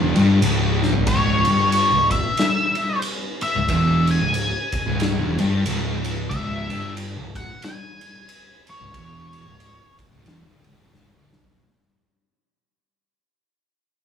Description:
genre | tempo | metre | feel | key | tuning
stoner and doom metal | 92 BPM | 4/4 | swing 59% on 8ths | C# phrygian | A4 = 440 Hz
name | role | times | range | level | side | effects
thick fuzz guitar | riff | 0.0-11.6 s | C#2 to B2 | -23 LUFS | left 4 dB | distortion
thick fuzz guitar | riff | 0.0-11.6 s | C#2 to B2 | -25 LUFS | right 4 dB | distortion
fuzz picked electric bass | bass | 0.0-11.6 s | C#1 to B1 | -25 LUFS | equal | overdrive
oversized low-tuned drum kit | drums | 0.2-11.6 s | kick drum, ride cymbal, snare drum, toms | -26 LUFS | left 1 dB | none
octave-fuzz lead guitar | melody | 1.1-10.0 s | C#5 to G#5 | -22 LUFS | left 1 dB | wah, distortion
room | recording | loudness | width
moderate studio reverb, RT60 0.7 s | band playing live in one room, studio ambience | -18 LUFS | side -8 dB against mid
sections
0.0-11.6 A section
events
fade-out 0.0-11.6; drum fill 0.7-1.1, 10.9-11.6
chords
0.0 C#m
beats
0.42 | 1.08 1.73 2.39 3.04 | 3.70 4.35 5.01 5.66 | 6.32 6.98 7.63 8.29 | 8.95 9.60 10.26 10.92

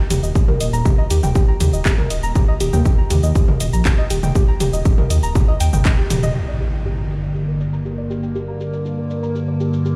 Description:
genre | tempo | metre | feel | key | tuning
melodic techno | 120 BPM | 4/4 | straight | G minor | A4 = 440 Hz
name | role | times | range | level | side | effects
soft round pluck | arpeggios | 0.0-9.9 s | G4 to Bb5 | -28 LUFS | equal | chorus, sidechain pumping, delay
dark detuned saw bass | bass | 0.1-6.3 s | Eb1 to Eb2 | -22 LUFS | equal | sidechain pumping
house drum kit | drums | 0.1-10.0 s | handclaps, hi-hat, shaker, toms | -26 LUFS | equal | low-pass filter on hats, low-pass filter on perc, low-pass filter on toms, low-pass filter on snare, low-pass filter on room
electronic kick drum | drums | 0.4-6.0 s | none | -17 LUFS | equal | none
evolving wavetable pad | sustained chords | 6.8-10.0 s | G2 to Bb3 | -24 LUFS | equal | chorus, built-in reverb, phaser, sidechain pumping
impact | sound effects | 6.4-8.4 s | none | -28 LUFS | equal | none
room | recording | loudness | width
digital ambience | played on a big sound system in a bare room, stone room reverb | -18 LUFS | mono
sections
0.0-6.4 A section; 6.4-10.0 B section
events
band accent 5.9; drum fill 6.1; impact 6.4-8.4; filter sweep on drum 6.4-10.0; filter sweep on synth arpeggio sound 6.4-10.0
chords
0.0 Eb; 6.4 Gm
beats
| 0.35 0.85 1.35 1.85 | 2.35 2.85 3.35 3.85 | 4.35 4.85 5.35 5.85 | 6.35 6.85 7.35 7.85 | 8.35 8.85 9.35 9.85

